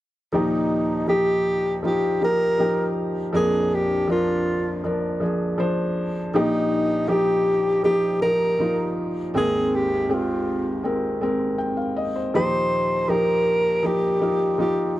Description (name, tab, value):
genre	pop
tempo	80 BPM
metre	4/4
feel	straight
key	Eb major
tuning	A4 = 441 Hz
part	breathy alto saxophone	melody	0.3-14.9 s	Eb4 to C5	-22 LUFS	equal	none
part	felt-muted upright piano	accompaniment	0.3-15.0 s	Ab1 to G5	-23 LUFS	equal	none
room	studio reverb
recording	dry, close 1970s-style studio recording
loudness	-20 LUFS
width	side -15 dB against mid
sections	0.3-15.0 A section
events	none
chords	0.3 Ebadd9; 3.3 Bb; 6.3 Ebadd9/Bb; 9.3 Abadd9; 12.3 Ebadd9